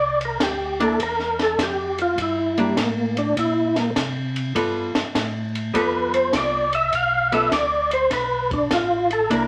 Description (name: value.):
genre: soul jazz organ trio.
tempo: 101 BPM.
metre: 4/4.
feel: swing 67% on 8ths.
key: unclear.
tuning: A4 = 440 Hz.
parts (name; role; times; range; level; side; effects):
percussive tonewheel organ; melody; 0.0-9.5 s; G3 to F5; -23 LUFS; equal; chorus vibrato, fast rotary speaker.
mellow tonewheel organ; bass; 0.0-9.5 s; A1 to C3; -33 LUFS; equal; chorus vibrato, slow rotary speaker.
compact cocktail drum kit; drums; 0.2-9.5 s; hi-hat, kick drum, ride cymbal, snare drum; -29 LUFS; equal; none.
archtop guitar, miked and amplified; accompaniment; 0.8-9.5 s; G3 to A4; -25 LUFS; equal; none.
room: moderate studio reverb, RT60 0.7 s.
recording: vinyl crackle.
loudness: -22 LUFS.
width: mono.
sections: 0.0-9.5 A section.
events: tonewheel organ solo 0.0-9.5.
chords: 0.0 C9; 4.5 G9.